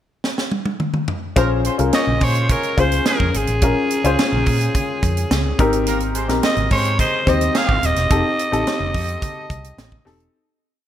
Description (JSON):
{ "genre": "polished 1980s jazz-funk pop", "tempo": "107 BPM", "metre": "4/4", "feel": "straight", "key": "unclear", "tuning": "A4 = 441 Hz", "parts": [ { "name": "tight funk drum kit", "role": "drums", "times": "0.2-10.3 s", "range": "hi-hat, kick drum, snare drum, toms", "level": "-21 LUFS", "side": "right 1 dB", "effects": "gated reverb" }, { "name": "warm horn section", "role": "second line", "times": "1.4-7.8 s", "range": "Eb3 to Eb5", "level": "-27 LUFS", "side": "right 2 dB", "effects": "none" }, { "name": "warm baby grand piano", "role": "accompaniment", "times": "1.4-10.4 s", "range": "C4 to C5", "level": "-21 LUFS", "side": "left 4 dB", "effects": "lush chorus" }, { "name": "vintage muted fingered electric bass", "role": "bass", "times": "1.4-10.3 s", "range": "Eb1 to Bb2", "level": "-21 LUFS", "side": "right 1 dB", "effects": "none" }, { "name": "congas", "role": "percussion", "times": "1.4-10.2 s", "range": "none", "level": "-35 LUFS", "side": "right 2 dB", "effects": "none" }, { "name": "raspy alto saxophone", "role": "melody", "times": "1.9-10.1 s", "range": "Ab4 to F5", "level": "-22 LUFS", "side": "right 1 dB", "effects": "none" } ], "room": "light reverb, small room ambience", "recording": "bright 1980s-style digital production", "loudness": "-16 LUFS", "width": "side -11 dB against mid", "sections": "0.0-1.4 pickup bar; 1.4-10.3 pre-chorus", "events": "drum fill 0.2-1.4; fade-out 8.1-10.3", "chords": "0.0 N.C.; 1.4 Bbm9; 5.6 Abmaj7; 8.1 F7", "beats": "0.24 0.81 | 1.37 1.94 2.50 3.06 | 3.63 4.19 4.75 5.31 | 5.87 6.43 6.99 7.55 | 8.11 8.67 9.23 9.78" }